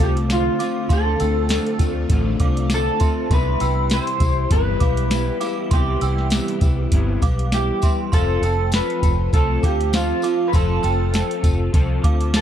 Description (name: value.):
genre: indie pop, bedroom pop.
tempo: 100 BPM.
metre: 4/4.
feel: swing 55% on 16ths.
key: C major.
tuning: A4 = 440 Hz.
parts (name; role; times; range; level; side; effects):
electric guitar through a small old amp; melody; 0.0-12.4 s; F4 to C5; -23 LUFS; right 1 dB; wide subtle chorus.
synth chime; second line; 0.0-12.3 s; E5 to E6; -32 LUFS; right 6 dB; ensemble chorus, analog chorus, ping-pong delay.
electric guitar through a small old amp; accompaniment; 0.0-12.4 s; C3 to A4; -26 LUFS; left 4 dB; ensemble chorus, warbly pitch drift.
phased string machine; sustained chords; 0.0-12.4 s; D3 to G4; -32 LUFS; equal; ensemble chorus, phaser.
vintage muted fingered electric bass; bass; 0.0-12.4 s; F1 to D2; -21 LUFS; equal; none.
soft vintage rhythm box; drums; 0.0-12.4 s; hi-hat, kick drum, snare drum; -20 LUFS; equal; none.
tambourine; percussion; 0.0-12.4 s; none; -38 LUFS; left 5 dB; none.
room: little or no reverb.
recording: dark, warm production.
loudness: -17 LUFS.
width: side -10 dB against mid.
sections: 0.0-12.4 A section.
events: none.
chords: 0.0 Dm7; 3.3 Cmaj7; 8.1 F.